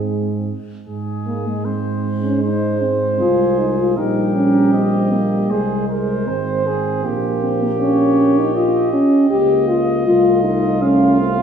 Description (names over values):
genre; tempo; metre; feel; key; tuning
classical, brass quintet; 78 BPM; 4/4; rubato; Ab major; A4 = 442 Hz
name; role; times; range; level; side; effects
warm cornet; melody; 0.0-11.4 s; Ab4 to F5; -28 LUFS; left 3 dB; none
mellow flugelhorn; second line; 0.0-11.4 s; F4 to C5; -23 LUFS; right 4 dB; none
dark French horn; accompaniment; 0.0-11.4 s; Ab3 to G4; -17 LUFS; left 2 dB; none
mellow trombone; accompaniment; 0.0-11.4 s; G3 to C4; -23 LUFS; right 2 dB; none
mellow tuba; bass; 0.0-11.4 s; Ab1 to Ab2; -23 LUFS; right 4 dB; none
room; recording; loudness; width
moderate scoring stage reverb, RT60 1.8 s; studio ambience; -15 LUFS; side -7 dB against mid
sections
0.9-11.4 A section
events
none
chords
0.0 Ab; 4.0 Eb/Bb; 5.5 Ab/C; 7.0 Bbm; 10.1 F7/C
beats
0.07 | 0.88 1.66 2.44 3.21 | 3.97 4.74 5.50 6.27 | 7.04 7.80 8.56 9.31 | 10.07 10.82